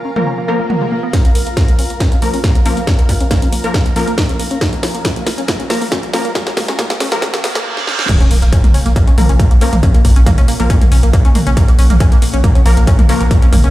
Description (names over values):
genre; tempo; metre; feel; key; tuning
driving peak-time techno; 138 BPM; 4/4; straight; Bb minor; A4 = 440 Hz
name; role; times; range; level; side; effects
tight sequenced synth; riff; 0.0-13.7 s; Ab3 to Db4; -22 LUFS; equal; chorus, phaser, sidechain pumping, digital delay
granular cloud pad; texture; 0.0-7.7 s; F4 to Bb5; -26 LUFS; equal; built-in reverb, sidechain pumping
rave stab; stabs; 0.2-13.2 s; F3 to Bb4; -22 LUFS; left 2 dB; chorus, built-in reverb, sidechain pumping, digital delay
techno drum kit; drums; 0.2-13.7 s; crash cymbal, hi-hat, snare drum, toms; -20 LUFS; equal; sidechain pumping on toms, sidechain pumping on hats, sidechain pumping on cymbals
swell, riser, reverse cymbal and impact; sound effects; 0.4-9.8 s; none; -24 LUFS; right 1 dB; none
electronic kick drum; drums; 1.1-13.6 s; none; -12 LUFS; equal; distortion
metallic inharmonic drone; drone; 8.8-13.7 s; Bb2 to Bb3; -23 LUFS; equal; chorus, built-in reverb, sidechain pumping
saturated sub bass; bass; 8.3-13.7 s; Bb1; -12 LUFS; equal; tube saturation, sidechain pumping, low-pass filter
room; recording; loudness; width
digital ambience; played on a big sound system in a bare room, large studio reverb, high-pass filter; -10 LUFS; side -16 dB against mid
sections
0.0-1.1 A section; 1.1-8.1 B section; 8.1-13.7 C section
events
swell 0.4-1.1; build-up 1.1-8.1; drum fill 1.1-7.7, 7.8-8.1; riser 1.1-7.7; filter sweep on synth arpeggio sound 1.1-8.1; filter sweep 1.1-8.1; reverse cymbal 7.2-8.1; drop 8.1-13.7; impact 8.1-9.8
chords
0.0 Bb5